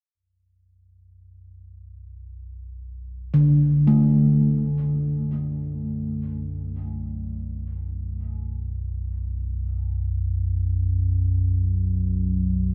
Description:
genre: dark ambient drone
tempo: free time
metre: none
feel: none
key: B minor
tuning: A4 = 439 Hz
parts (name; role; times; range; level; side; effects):
- deep rumbling drone; drone; 1.0-12.7 s; B1 to F#2; -28 LUFS; equal; built-in reverb
- gamelan-type bossed gongs; arpeggios; 3.3-9.7 s; D3 to A3; -23 LUFS; equal; diffuse ambient delay
room: wet cathedral reverb, RT60 5.8 s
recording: none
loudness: -24 LUFS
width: mono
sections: 0.1-12.7 A section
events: fade-in on synth drone 0.1-12.7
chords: 0.1 Bm7

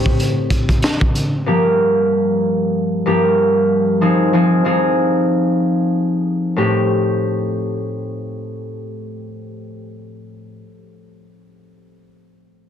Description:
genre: hip hop, boom-bap hip-hop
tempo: 94 BPM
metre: 4/4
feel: swing 57% on 16ths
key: A phrygian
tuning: A4 = 440 Hz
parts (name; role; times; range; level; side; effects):
- concert harp; accompaniment; 0.0-10.6 s; G2 to Ab4; -16 LUFS; equal; high-pass filter, low-pass filter
- crunchy breakbeat drum kit; drums; 0.1-1.3 s; hi-hat, kick drum, snare drum; -16 LUFS; equal; none
room: light reverb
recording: dense, heavily limited modern master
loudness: -14 LUFS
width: side -9 dB against mid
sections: 0.0-6.6 A section; 6.6-9.1 B section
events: none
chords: 0.0 Am7; 1.5 Gm7; 4.0 Fm7; 6.6 Am7

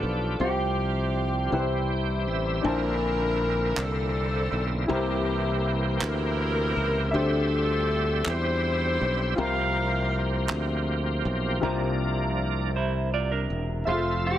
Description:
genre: slow gospel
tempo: 54 BPM (dotted quarters)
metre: 6/8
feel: straight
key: unclear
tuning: A4 = 440 Hz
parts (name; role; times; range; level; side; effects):
- clean electric guitar; melody; 0.0-2.2, 13.9-14.4 s; F4 to A4; -31 LUFS; right 4 dB; none
- clear saxophone section; melody; 0.0-10.5, 13.9-14.4 s; A3 to F5; -29 LUFS; left 2 dB; none
- warm upright piano; accompaniment; 0.0-14.4 s; G2 to A5; -31 LUFS; left 3 dB; none
- bright tonewheel organ; sustained chords; 0.0-14.4 s; D3 to G5; -31 LUFS; right 1 dB; slow rotary speaker, overdrive, chorus vibrato
- modern bright fingered electric bass; bass; 0.0-14.4 s; E1 to E2; -28 LUFS; equal; none
- group handclap; percussion; 3.8-10.8 s; none; -32 LUFS; right 3 dB; none
- clean electric guitar; second line; 12.8-13.8 s; D4 to D5; -30 LUFS; right 6 dB; tremolo
room: light reverb, small room ambience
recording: none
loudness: -24 LUFS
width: side -12 dB against mid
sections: 0.0-2.7 A section; 2.7-11.6 B section; 11.6-13.9 C section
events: tonewheel organ fill 1.5-2.7; tonewheel organ solo 11.6-13.9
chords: 0.4 Csus4; 1.5 C; 2.7 Bbmaj9#11; 4.9 C7; 7.1 Dm11; 9.4 C7sus4; 13.9 Fmaj7

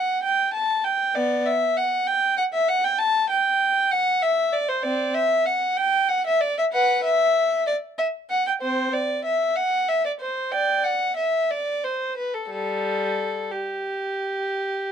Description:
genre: classical, baroque-style suite movement for unaccompanied violin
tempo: 63 BPM (dotted quarters)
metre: 12/8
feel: uneven beats, rubato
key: G major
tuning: A4 = 440 Hz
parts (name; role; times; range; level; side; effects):
- rich violin; solo; 0.0-14.9 s; G3 to A5; -20 LUFS; equal; none
room: light reverb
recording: dark, warm production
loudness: -20 LUFS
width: side -8 dB against mid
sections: 0.0-14.9 A section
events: none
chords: none

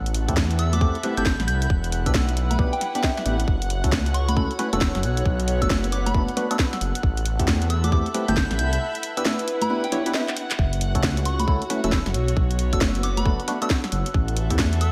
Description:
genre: UK garage, two-step garage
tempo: 135 BPM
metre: 4/4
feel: swing 63% on 16ths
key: unclear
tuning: A4 = 440 Hz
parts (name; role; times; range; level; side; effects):
- warm analog pad; sustained chords; 0.0-14.9 s; F#5 to F#6; -39 LUFS; equal; chorus, sidechain pumping
- dark detuned saw bass; bass; 0.0-14.9 s; E1 to E2; -26 LUFS; equal; none
- dark studio string section; texture; 0.0-14.9 s; B3 to B5; -35 LUFS; equal; sidechain pumping
- garage drum kit; drums; 0.1-14.9 s; congas, handclaps, hi-hat, snare drum; -29 LUFS; equal; studio reverb
- percussive organ stab; stabs; 0.3-14.6 s; A3 to C#5; -32 LUFS; equal; chorus, phaser, analog delay
- electronic kick drum; drums; 0.3-14.7 s; none; -25 LUFS; equal; studio reverb
- soft synth bell; melody; 0.6-14.9 s; E5 to G6; -33 LUFS; equal; chorus, phaser, analog delay
room: moderate lush hall reverb, RT60 1.5 s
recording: dreamy mix soaked in reverb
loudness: -23 LUFS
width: mono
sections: 0.0-14.9 A section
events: drum fill 10.3-10.6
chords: 0.0 Am7; 1.7 Em7; 3.5 F#m7; 5.0 Bm7; 7.0 Am7; 8.8 Em7; 10.6 F#m7; 12.1 Bm7; 14.1 Am7

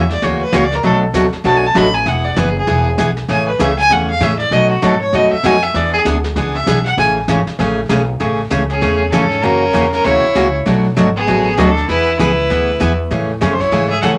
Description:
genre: country, western swing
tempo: 196 BPM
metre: 4/4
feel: swing 61% on 8ths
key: A major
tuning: A4 = 442 Hz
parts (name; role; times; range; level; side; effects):
- clear fiddle; melody; 0.0-14.1 s; F#4 to B5; -19 LUFS; equal; none
- picked steel-string acoustic guitar; accompaniment; 0.0-14.1 s; B2 to G#4; -18 LUFS; equal; none
- upright bass; bass; 0.0-14.2 s; E1 to C#3; -22 LUFS; equal; none
- vintage brush drum kit; drums; 0.1-14.2 s; brushed snare drum, hi-hat, kick drum, snare drum; -29 LUFS; equal; none
- clear fiddle; second line; 8.7-14.1 s; B3 to A4; -23 LUFS; equal; none
room: wet club reverb, RT60 0.7 s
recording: none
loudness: -14 LUFS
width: mono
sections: 0.0-8.2 A section; 8.2-14.2 B section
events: fiddle solo 0.0-8.2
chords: 0.0 F#7; 0.8 Bm7; 2.1 E; 3.3 Amaj7; 4.5 B7; 5.7 E7; 7.0 Amaj7; 9.4 F#7; 10.7 Bm7; 11.9 E; 13.1 Amaj7

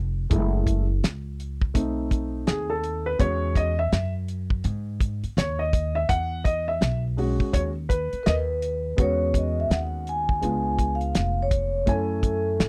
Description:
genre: hip hop, jazz-hop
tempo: 83 BPM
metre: 4/4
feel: swing 62% on 16ths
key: E major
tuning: A4 = 440 Hz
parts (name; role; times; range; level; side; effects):
- upright bass; bass; 0.0-12.7 s; E#1 to G#2; -30 LUFS; equal; none
- dark concert grand piano; accompaniment; 0.3-12.7 s; G#3 to G#5; -30 LUFS; equal; none
- cloth-damped thuddy drum kit; drums; 0.3-12.7 s; hi-hat, kick drum, snare drum; -26 LUFS; equal; none
- vibraphone with soft mallets; melody; 8.2-12.7 s; A4 to G#5; -29 LUFS; equal; none
room: little or no reverb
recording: dry, close 1970s-style studio recording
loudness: -25 LUFS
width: mono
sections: 0.0-9.0 A section; 9.0-12.7 B section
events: grand piano solo 0.0-9.0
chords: 0.3 F#m7; 1.8 B7b9; 3.2 E69; 10.4 C#7b9; 11.9 F#m7

